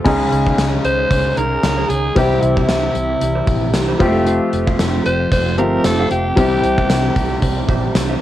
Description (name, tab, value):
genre	1980s-style pop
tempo	114 BPM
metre	4/4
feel	swing 55% on 16ths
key	unclear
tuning	A4 = 435 Hz
part	clear concert grand piano	accompaniment	0.0-8.2 s	C3 to Ab4	-18 LUFS	left 2 dB	cassette tape
part	ensemble organ-string	sustained chords	0.1-8.2 s	Eb3 to C4	-25 LUFS	right 1 dB	ensemble chorus, cassette tape
part	mellow electric guitar	riff	0.1-8.2 s	Eb4 to F5	-28 LUFS	right 5 dB	lush chorus, cassette tape
part	vintage muted fingered electric bass	bass	0.1-8.1 s	F1 to Db2	-22 LUFS	equal	none
part	gated 80s drum kit	drums	0.1-8.1 s	crash cymbal, hi-hat, kick drum, snare drum, tambourine	-19 LUFS	equal	none
part	tambourine	percussion	0.6-8.1 s	none	-35 LUFS	right 7 dB	none
part	raspy alto saxophone	melody	0.9-7.9 s	E4 to C5	-21 LUFS	equal	cassette tape
room	moderate booth ambience, RT60 0.2 s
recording	home recording on cassette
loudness	-14 LUFS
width	side -13 dB against mid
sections	0.1-8.2 A section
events	none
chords	0.1 Dbsus2; 2.2 C; 4.0 Fadd9; 6.4 C